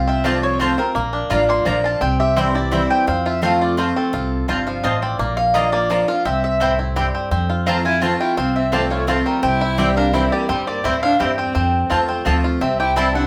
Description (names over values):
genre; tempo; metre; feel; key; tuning
bluegrass; 170 BPM; 3/4; straight; F major; A4 = 439 Hz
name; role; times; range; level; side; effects
bluegrass banjo; melody; 0.0-13.3 s; F3 to Bb4; -26 LUFS; equal; none
mandolin; melody; 0.0-13.3 s; A4 to C6; -24 LUFS; equal; none
picked steel-string acoustic guitar; accompaniment; 0.0-13.3 s; F2 to F4; -25 LUFS; equal; none
upright bass; bass; 0.0-13.3 s; G1 to F2; -26 LUFS; equal; none
mandolin; stabs; 0.2-13.1 s; Bb3 to Bb5; -25 LUFS; equal; none
clear fiddle; second line; 7.7-13.3 s; G3 to F4; -27 LUFS; equal; none
room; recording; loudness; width
wet studio ambience, RT60 0.5 s; band playing live in one room; -19 LUFS; mono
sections
0.0-13.3 A section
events
none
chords
0.0 F; 1.0 Bb; 2.0 C; 3.1 F; 5.2 Bb; 6.3 C; 7.3 F; 9.4 C; 11.6 F; 12.6 C